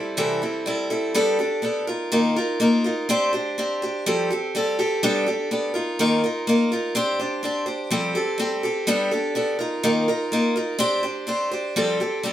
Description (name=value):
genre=rock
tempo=124 BPM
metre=4/4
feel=straight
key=unclear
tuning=A4 = 440 Hz
part: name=picked steel-string acoustic guitar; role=solo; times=0.0-12.3 s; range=C3 to C5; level=-20 LUFS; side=equal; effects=none
room=wet studio reverb, RT60 0.6 s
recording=band playing live in one room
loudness=-20 LUFS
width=side -12 dB against mid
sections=0.0-1.1 A section; 1.1-12.3 B section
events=none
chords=0.0 C6; 1.1 Gadd9; 1.9 Ebsus2; 3.1 Csus2; 4.1 Fadd9; 5.0 Gadd9; 5.7 Ebsus2; 7.0 Csus2; 7.9 Fadd9; 8.9 Gadd9; 9.6 Ebsus2; 10.8 Csus2; 11.8 Fadd9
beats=0.17 0.66 | 1.15 1.63 2.12 2.60 | 3.09 3.57 4.05 4.54 | 5.02 5.50 5.99 6.47 | 6.95 7.43 7.92 8.40 | 8.88 9.36 9.84 10.32 | 10.80 11.28 11.76 12.24